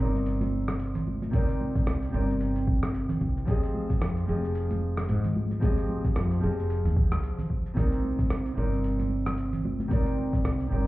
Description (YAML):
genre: sunset chillout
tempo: 112 BPM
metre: 4/4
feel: swing 57% on 16ths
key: C minor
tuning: A4 = 441 Hz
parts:
  - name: nylon-string guitar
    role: accompaniment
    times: 0.0-10.9 s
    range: C3 to Eb5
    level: -30 LUFS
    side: equal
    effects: auto-pan, ping-pong delay
  - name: woody fretless electric bass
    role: bass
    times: 0.0-10.9 s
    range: F1 to Ab2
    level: -28 LUFS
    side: equal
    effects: none
  - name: dusty soul sampler-style drum kit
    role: drums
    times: 0.2-10.7 s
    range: hi-hat, rim click, shaker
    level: -38 LUFS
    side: equal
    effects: none
  - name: congas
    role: percussion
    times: 0.4-10.3 s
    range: none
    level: -36 LUFS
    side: right 1 dB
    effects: none
  - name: electronic kick drum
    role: drums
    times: 1.3-10.4 s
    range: none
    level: -27 LUFS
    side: equal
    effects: overdrive
room: light reverb, digital ambience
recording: heard muffled through a wall, club reverb, EQ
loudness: -25 LUFS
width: side -18 dB against mid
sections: 0.0-10.9 A section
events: none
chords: 0.0 Cm9; 3.5 Fm7; 7.8 Cm9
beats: 0.27 0.80 | 1.34 1.87 2.41 2.94 | 3.48 4.02 4.55 5.09 | 5.62 6.16 6.70 7.23 | 7.77 8.30 8.84 9.37 | 9.91 10.45